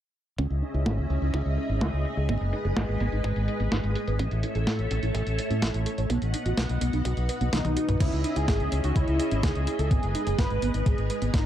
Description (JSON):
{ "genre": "italo disco", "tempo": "126 BPM", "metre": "4/4", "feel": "straight", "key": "C# minor", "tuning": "A4 = 438 Hz", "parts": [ { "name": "string machine, full ensemble", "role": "sustained chords", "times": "0.4-11.5 s", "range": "G#3 to F#5", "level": "-32 LUFS", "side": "equal", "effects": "ensemble chorus" }, { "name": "soft round pluck", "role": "arpeggios", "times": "0.4-11.4 s", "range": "B3 to C#5", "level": "-35 LUFS", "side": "right 3 dB", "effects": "lush chorus, vintage 12-bit sampler grit, tape echo" }, { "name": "modern bright fingered electric bass", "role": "bass", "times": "0.4-11.4 s", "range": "F#1 to A2", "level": "-27 LUFS", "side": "equal", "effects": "none" }, { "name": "clean 12-bit digital drum machine", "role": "drums", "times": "0.4-11.4 s", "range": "crash cymbal, hi-hat, snare drum, toms", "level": "-32 LUFS", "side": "equal", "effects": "overdrive, low-pass filter on hats, low-pass filter on snare, low-pass filter on toms, low-pass filter on cymbals, low-pass filter on room" }, { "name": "electronic kick drum", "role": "drums", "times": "0.4-11.4 s", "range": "none", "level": "-26 LUFS", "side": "equal", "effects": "overdrive, high-pass filter on kick, high-pass filter on room" }, { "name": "wide unison lead", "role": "melody", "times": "7.5-11.5 s", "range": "D#4 to B4", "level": "-30 LUFS", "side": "equal", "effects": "wide subtle chorus, tape echo" } ], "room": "light reverb", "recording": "dark, warm production", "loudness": "-24 LUFS", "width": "side -11 dB against mid", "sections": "0.4-8.0 A section; 8.0-11.5 B section", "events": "filter sweep on drum 0.4-8.0; drum fill 7.5-8.0", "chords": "0.4 C#madd9; 2.3 G#m; 4.2 A; 6.1 B; 8.0 C#madd9; 9.9 G#m" }